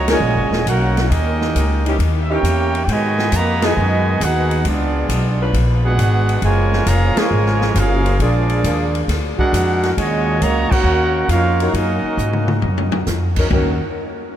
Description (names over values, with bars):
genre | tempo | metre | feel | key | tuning
jazz, big band swing | 136 BPM | 4/4 | swing 68% on 8ths | Eb minor | A4 = 443 Hz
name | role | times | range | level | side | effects
warm trumpet section | melody | 0.0-12.6 s | Bb3 to Bb5 | -22 LUFS | right 1 dB | analog delay
mellow trombone section | second line | 0.0-13.8 s | Bb2 to G4 | -22 LUFS | right 4 dB | none
upright bass | bass | 0.0-13.8 s | Eb1 to Ab2 | -18 LUFS | left 1 dB | none
dark saxophone section | sustained chords | 0.1-8.9, 11.6-13.7 s | Fb3 to Cb5 | -27 LUFS | left 2 dB | none
swinging big-band drum kit | drums | 0.1-13.6 s | crash cymbal, hi-hat, kick drum, ride cymbal, snare drum, toms | -24 LUFS | left 1 dB | none
room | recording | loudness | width
moderate huge ambient reverb, RT60 6.5 s | dreamy mix soaked in reverb | -14 LUFS | side -11 dB against mid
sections
0.0-13.5 A section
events
band accent 0.0, 3.5, 7.1, 10.6; drum fill 12.2-13.1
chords
0.0 Ebm7; 1.1 Eb7b9; 2.9 Abm7; 4.7 Db7b9; 6.4 Gbmaj9; 8.2 Bb7; 10.0 Ebm7